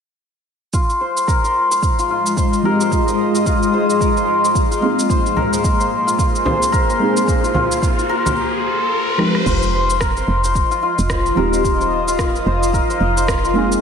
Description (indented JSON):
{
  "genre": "organic downtempo",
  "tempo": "110 BPM",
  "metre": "4/4",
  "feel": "swing 58% on 16ths",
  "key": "F minor",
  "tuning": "A4 = 439 Hz",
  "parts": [
    { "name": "granular cloud pad", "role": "sustained chords", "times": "1.6-13.8 s", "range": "Ab3 to Eb5", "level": "-21 LUFS", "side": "left 1 dB", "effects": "built-in reverb, sidechain pumping, shimmer reverb" },
    { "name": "santur", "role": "arpeggios", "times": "0.7-13.8 s", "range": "F4 to C5", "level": "-18 LUFS", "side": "left 2 dB", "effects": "low-pass filter, tape echo, shimmer reverb" },
    { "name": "electronic kick drum", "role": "drums", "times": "0.7-13.4 s", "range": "none", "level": "-20 LUFS", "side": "right 1 dB", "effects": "none" },
    { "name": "organic electronic drum kit", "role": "drums", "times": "0.7-13.8 s", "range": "crash cymbal, rim click, shaker", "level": "-27 LUFS", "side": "right 1 dB", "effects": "none" },
    { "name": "deep mellow chord stab", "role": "accompaniment", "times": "2.6-13.8 s", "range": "F3 to Ab4", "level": "-22 LUFS", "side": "right 1 dB", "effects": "chorus, cassette tape, sidechain pumping, tape echo, shimmer reverb" },
    { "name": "riser", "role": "sound effects", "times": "6.8-9.5 s", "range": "none", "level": "-25 LUFS", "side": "right 1 dB", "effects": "none" },
    { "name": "frame drum", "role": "percussion", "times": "5.4-8.3 s", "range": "none", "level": "-24 LUFS", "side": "right 2 dB", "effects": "none" },
    { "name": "woody FM bass", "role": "bass", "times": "9.5-13.8 s", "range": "Eb1 to F1", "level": "-21 LUFS", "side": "right 1 dB", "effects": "none" }
  ],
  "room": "wet lush hall reverb, RT60 1.7 s",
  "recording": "dreamy mix soaked in reverb",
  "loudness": "-14 LUFS",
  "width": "side -7 dB against mid",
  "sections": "0.7-9.5 A section; 9.5-13.8 B section",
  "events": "filter sweep on synth stab 0.7-9.5; riser 6.8-9.5; drum fill 9.2",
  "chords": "0.7 Fm7"
}